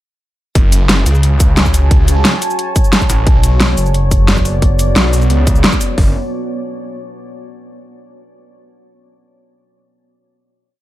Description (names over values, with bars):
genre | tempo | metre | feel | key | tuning
dark technical drum and bass | 177 BPM | 4/4 | straight | F# minor | A4 = 438 Hz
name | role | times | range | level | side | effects
deep dark ambient pad | sustained chords | 1.2-6.1 s | B3 to A5 | -21 LUFS | right 1 dB | chorus, built-in reverb, sidechain pumping
snarling distorted saw bass | bass | 0.6-6.1 s | F#1 to C#2 | -12 LUFS | equal | distortion, tube saturation, sidechain pumping
dubstep drum kit | drums | 0.6-6.1 s | hi-hat, kick drum | -13 LUFS | equal | none
dubstep drum kit | drums | 0.6-5.9 s | hi-hat, shaker, snare drum | -15 LUFS | equal | none
pulsing pluck wobble bass | bass | 3.6-4.9 s | F#1 to B1 | -14 LUFS | equal | chorus
room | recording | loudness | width
little or no reverb | none | -10 LUFS | side -15 dB against mid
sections
0.6-6.0 drop; 6.0-7.3 final chord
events
drop 0.6-6.0; band accent 5.6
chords
0.6 F#m; 3.3 Bmadd9; 6.0 F#m